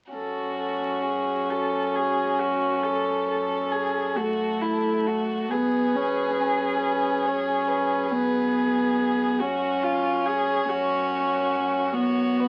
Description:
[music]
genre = classical, slow romantic movement for string quartet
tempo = 46 BPM (dotted quarters)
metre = 12/8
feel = rubato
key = F# minor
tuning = A4 = 440 Hz
[part]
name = rich violin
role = melody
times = 0.1-12.5 s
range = F#4 to C#5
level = -34 LUFS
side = equal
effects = none
[part]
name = rich violin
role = second line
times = 0.1-12.5 s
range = E4 to A4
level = -30 LUFS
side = equal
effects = none
[part]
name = warm viola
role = accompaniment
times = 0.1-12.5 s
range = A3 to C#4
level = -27 LUFS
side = equal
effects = none
[part]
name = warm cello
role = bass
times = 0.1-12.5 s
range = F#2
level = -44 LUFS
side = equal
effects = none
[sound]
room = wet studio ambience, RT60 0.5 s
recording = very old 78 rpm record, vinyl crackle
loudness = -25 LUFS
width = mono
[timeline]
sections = 0.1-12.5 A section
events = none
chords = 0.1 F#m; 5.5 C#7(no3)/F#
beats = | 0.13 1.51 2.84 4.16 | 5.50 6.81 8.11 9.41 | 10.71 11.99

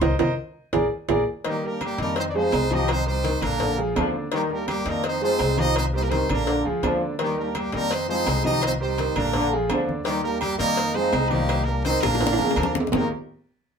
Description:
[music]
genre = latin, salsa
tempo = 167 BPM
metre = 4/4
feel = straight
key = Eb major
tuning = A4 = 439 Hz
[part]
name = clear concert grand piano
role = accompaniment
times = 0.0-13.1 s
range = D3 to Eb5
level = -27 LUFS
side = right 1 dB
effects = none
[part]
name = upright bass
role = bass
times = 0.0-13.1 s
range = Bb1 to F2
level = -28 LUFS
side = left 1 dB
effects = none
[part]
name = congas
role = percussion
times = 0.0-13.0 s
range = none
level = -34 LUFS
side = left 2 dB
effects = none
[part]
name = cowbell and bongos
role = percussion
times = 0.0-13.0 s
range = none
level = -31 LUFS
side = left 6 dB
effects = none
[part]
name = timbales and agogo bells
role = percussion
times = 0.0-13.0 s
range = none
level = -30 LUFS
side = right 6 dB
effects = none
[part]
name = brilliant horn section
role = melody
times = 1.5-13.1 s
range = G3 to Eb5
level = -25 LUFS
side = right 2 dB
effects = none
[part]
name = mellow trombone section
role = second line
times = 1.5-13.1 s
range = D3 to G3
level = -29 LUFS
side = left 2 dB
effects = none
[sound]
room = wet small room reverb, RT60 0.6 s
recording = band playing live in one room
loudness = -21 LUFS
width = side -6 dB against mid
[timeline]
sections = 0.0-1.5 A section; 1.5-12.9 B section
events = grand piano solo 0.0-1.5; band accent 0.0-1.5; drum fill 0.4-1.5, 12.0-12.9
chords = 0.0 Cm7; 0.7 Bb7; 1.5 Ebadd9; 2.2 Fm7; 2.9 Cm7; 3.6 Bb7; 4.3 Ebadd9; 5.0 Fm7; 5.8 Cm7; 6.5 Bb7; 7.2 Ebadd9; 7.9 Fm7; 8.6 Cm7; 9.3 Bb7; 10.1 Ebadd9; 10.8 Fm7; 11.5 Cm7; 12.2 Bb7; 12.9 Ebadd9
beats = | 0.02 0.38 0.74 1.10 | 1.46 1.81 2.17 2.53 | 2.89 3.25 3.61 3.97 | 4.33 4.68 5.04 5.40 | 5.76 6.12 6.47 6.83 | 7.19 7.55 7.91 8.27 | 8.62 8.98 9.34 9.70 | 10.06 10.42 10.78 11.13 | 11.49 11.85 12.21 12.57 | 12.93

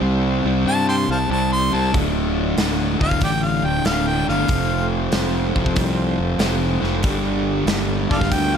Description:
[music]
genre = blues rock power trio and southern rock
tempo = 94 BPM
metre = 4/4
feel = swing 67% on 8ths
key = D minor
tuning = A4 = 440 Hz
[part]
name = percussive tonewheel organ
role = sustained chords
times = 0.0-8.6 s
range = G3 to D5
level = -30 LUFS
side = right 5 dB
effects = slow rotary speaker, overdrive, chorus vibrato
[part]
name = fuzz guitar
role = riff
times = 0.0-8.6 s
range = D2 to C4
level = -21 LUFS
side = left 1 dB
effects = distortion
[part]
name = fuzz fingered electric bass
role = bass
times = 0.0-8.6 s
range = D1 to G2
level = -23 LUFS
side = equal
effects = overdrive
[part]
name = clear harmonica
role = melody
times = 0.7-8.6 s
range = A4 to C6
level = -22 LUFS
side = left 1 dB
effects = overdrive
[part]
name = big rock drum kit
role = drums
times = 1.9-8.5 s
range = hi-hat, kick drum, snare drum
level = -23 LUFS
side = right 1 dB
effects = none
[sound]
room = light reverb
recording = none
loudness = -17 LUFS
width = side -7 dB against mid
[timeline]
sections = 0.0-8.6 A section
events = none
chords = 0.0 C; 1.9 Dm; 4.5 F; 7.0 Gm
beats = 0.02 0.66 1.30 | 1.94 2.58 3.22 3.85 | 4.49 5.13 5.77 6.40 | 7.04 7.68 8.31

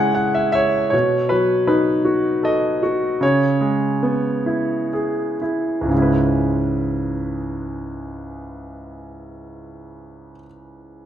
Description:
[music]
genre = classical, lyrical solo piano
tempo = 58-79 BPM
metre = 3/4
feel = rubato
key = C# minor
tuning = A4 = 439 Hz
[part]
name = bright concert grand piano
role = solo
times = 0.0-11.1 s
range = C#2 to G#5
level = -18 LUFS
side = equal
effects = none
[sound]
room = moderate recital hall reverb, RT60 1.3 s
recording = recorded in a church or concert hall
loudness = -17 LUFS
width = side -10 dB against mid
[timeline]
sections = 0.9-5.9 A section; 5.9-9.0 B section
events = grand piano fill 0.0-0.9; slowing down 0.9-5.9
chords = 0.0 C#m; 0.9 B7; 3.2 C#m7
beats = 0.16 | 0.93 1.69 2.45 | 3.23 4.04 4.93 | 5.92 6.94 7.94

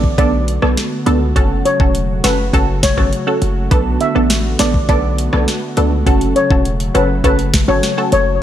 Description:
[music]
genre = dancehall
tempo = 102 BPM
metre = 4/4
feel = straight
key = F# minor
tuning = A4 = 440 Hz
[part]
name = punchy chord stab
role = accompaniment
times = 0.0-8.1 s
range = B3 to A4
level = -18 LUFS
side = right 2 dB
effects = chorus, phaser, sidechain pumping
[part]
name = warm analog pad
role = sustained chords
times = 0.0-8.4 s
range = C#3 to F#4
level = -23 LUFS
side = equal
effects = chorus, sidechain pumping
[part]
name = hard-hitting 808-style bass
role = bass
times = 0.0-8.4 s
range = E1 to C#2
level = -18 LUFS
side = equal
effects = none
[part]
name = afro-pop drum kit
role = drums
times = 0.0-8.3 s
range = hi-hat, kick drum, rim click, snare drum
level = -16 LUFS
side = equal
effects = none
[part]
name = steel pan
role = melody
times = 0.2-8.2 s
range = B4 to E5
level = -18 LUFS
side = left 2 dB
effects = ping-pong delay
[sound]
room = light reverb, digital ambience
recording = none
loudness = -12 LUFS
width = side -11 dB against mid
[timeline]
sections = 0.0-8.4 A section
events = none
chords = 0.0 Bm7; 1.4 F#m; 3.7 Bm7; 6.1 F#m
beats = 0.18 0.77 | 1.36 1.95 2.54 3.12 | 3.71 4.30 4.89 5.48 | 6.07 6.65 7.24 7.83 | 8.42

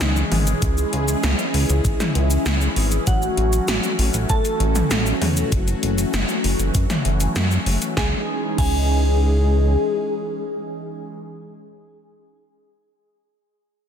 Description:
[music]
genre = synthwave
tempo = 98 BPM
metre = 4/4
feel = straight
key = C# minor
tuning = A4 = 440 Hz
[part]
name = warm velvety synth lead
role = melody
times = 0.0-11.2 s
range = D#4 to A4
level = -27 LUFS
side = left 1 dB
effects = chorus, tremolo, tape echo
[part]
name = soft synth bell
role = second line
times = 0.0-11.9 s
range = D#5 to A5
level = -32 LUFS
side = right 4 dB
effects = chorus, tape echo
[part]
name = phased analog pad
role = sustained chords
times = 0.0-11.2 s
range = E3 to G#4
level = -25 LUFS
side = left 1 dB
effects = phaser, chorus, sidechain pumping
[part]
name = chorused synth bass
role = bass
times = 0.0-9.8 s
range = F#1 to A2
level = -20 LUFS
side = equal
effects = none
[part]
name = 80s electronic pad drums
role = drums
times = 0.0-8.8 s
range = cabasa, crash cymbal, hi-hat, snare drum, toms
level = -24 LUFS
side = left 1 dB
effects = gated reverb on snare and toms
[part]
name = electronic kick drum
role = drums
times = 0.6-8.8 s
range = none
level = -22 LUFS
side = equal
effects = none
[sound]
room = light reverb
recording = dense, heavily limited modern master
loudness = -18 LUFS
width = side -8 dB against mid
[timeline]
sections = 0.0-8.0 A section; 8.0-10.4 B section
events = none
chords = 0.0 C#m; 3.1 A6; 5.5 F#m7; 8.0 C#madd9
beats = 0.01 | 0.62 1.24 1.85 2.46 | 3.07 3.68 4.30 4.91 | 5.52 6.13 6.75 7.36 | 7.97 8.58 9.19 9.81

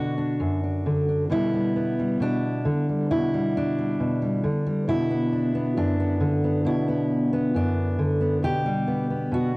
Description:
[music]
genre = folk, solo fingerstyle acoustic guitar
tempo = 67 BPM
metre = 4/4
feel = rubato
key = G major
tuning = A4 = 440 Hz
[part]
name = fingerpicked steel-string acoustic guitar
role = solo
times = 0.0-9.6 s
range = F#2 to G4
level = -22 LUFS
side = equal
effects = none
[sound]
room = light reverb, small room ambience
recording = home recording on cassette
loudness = -22 LUFS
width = side -25 dB against mid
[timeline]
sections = 0.0-9.6 A section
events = none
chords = 0.0 Bm; 1.3 G/B; 4.9 Bm; 8.4 G/B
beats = 0.40 | 1.31 2.21 3.11 4.00 | 4.88 5.77 6.66 7.54 | 8.42 9.32

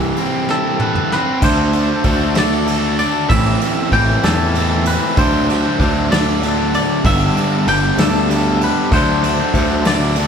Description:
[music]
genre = indie rock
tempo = 64 BPM (dotted quarters)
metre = 6/8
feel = straight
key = unclear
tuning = A4 = 440 Hz
[part]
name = distorted electric guitar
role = riff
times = 0.0-10.3 s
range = G2 to B4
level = -17 LUFS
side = left 1 dB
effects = distortion
[part]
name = overdriven picked electric bass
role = bass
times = 0.0-10.3 s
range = G1 to E2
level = -19 LUFS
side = right 1 dB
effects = none
[part]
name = soft brush drum kit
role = drums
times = 0.2-10.3 s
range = crash cymbal, kick drum, ride cymbal, snare drum, toms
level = -21 LUFS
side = equal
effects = none
[part]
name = twangy electric guitar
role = melody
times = 0.5-10.3 s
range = A4 to G5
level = -21 LUFS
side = equal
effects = digital delay
[sound]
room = wet large studio reverb, RT60 1.2 s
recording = band playing live in one room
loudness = -13 LUFS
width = side -7 dB against mid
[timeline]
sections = 0.0-1.4 A section; 1.4-10.3 B section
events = drum fill 0.5-1.4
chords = 0.0 Cmaj7; 1.4 D; 3.3 Am; 5.2 D; 7.0 G; 8.9 D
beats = 0.49 | 1.43 2.36 | 3.30 4.24 | 5.17 6.11 | 7.04 7.98 | 8.91 9.85

